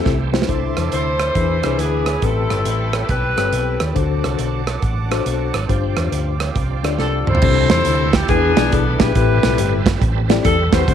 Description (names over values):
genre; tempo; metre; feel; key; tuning
uptempo gospel; 139 BPM; 4/4; swing 65% on 8ths; C major; A4 = 440 Hz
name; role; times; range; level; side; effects
clear saxophone section; melody; 0.0-3.9, 7.0-10.9 s; B3 to C5; -20 LUFS; left 1 dB; none
mellow tine electric piano; accompaniment; 0.0-10.9 s; G2 to D5; -22 LUFS; left 12 dB; medium stereo tremolo
bright tonewheel organ; sustained chords; 0.0-10.9 s; B2 to B4; -30 LUFS; right 14 dB; slow rotary speaker, chorus vibrato
hollow-body short-scale fingered electric bass; bass; 0.1-10.9 s; G1 to E2; -21 LUFS; equal; none
modern studio drum kit; drums; 0.1-10.9 s; crash cymbal, hi-hat, kick drum, rim click, snare drum, toms; -20 LUFS; right 3 dB; none
accordion; sustained chords; 0.5-7.4 s; E5 to D6; -32 LUFS; right 6 dB; light tremolo tuning
room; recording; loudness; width
studio reverb; 1960s-style stereo with parts hard left and right; -15 LUFS; side -9 dB against mid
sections
0.5-7.4 A section; 7.4-10.9 B section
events
drum fill 0.1-0.5, 7.0-7.4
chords
0.5 C69; 1.4 E7; 2.2 Am9; 4.0 D7; 5.7 G7sus4; 7.4 C69; 8.3 E7; 9.2 Am9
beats
0.06 | 0.49 0.93 1.36 1.79 | 2.23 2.66 3.09 3.53 | 3.96 4.39 4.83 5.26 | 5.70 6.13 6.56 6.99 | 7.43 7.86 8.29 8.72 | 9.15 9.58 10.01 10.44 | 10.87